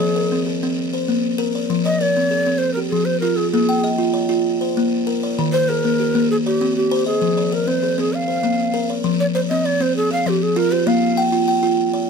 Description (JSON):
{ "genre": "southern african traditional", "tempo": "130 BPM (dotted quarters)", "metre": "12/8", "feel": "straight", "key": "F equiheptatonic", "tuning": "A4 = 439 Hz", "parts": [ { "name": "breathy mellow Native American-style cedar flute", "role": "melody", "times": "0.0-11.2 s", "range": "G4-33c to F5", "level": "-20 LUFS", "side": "right 1 dB", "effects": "none" }, { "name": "buzzing kalimba", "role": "arpeggios", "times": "0.0-12.1 s", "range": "Eb3+29c to G5-29c", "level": "-18 LUFS", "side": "left 1 dB", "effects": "none" } ], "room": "light reverb", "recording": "close, detailed microphones", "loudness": "-16 LUFS", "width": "side -5 dB against mid", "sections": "0.0-9.0 A section; 9.0-12.1 B section", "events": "none", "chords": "0.0 Fm; 0.8 Bb; 1.7 Fm; 3.5 Bb; 5.4 Eb; 6.3 Cm; 7.2 Fm; 8.1 Bb; 9.0 Fm; 10.9 Bb", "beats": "0.31 0.77 1.23 | 1.69 2.15 2.61 3.07 | 3.53 3.99 4.46 4.92 | 5.38 5.84 6.29 6.75 | 7.21 7.67 8.13 8.59 | 9.04 9.50 9.96 10.41 | 10.87 11.32 11.78" }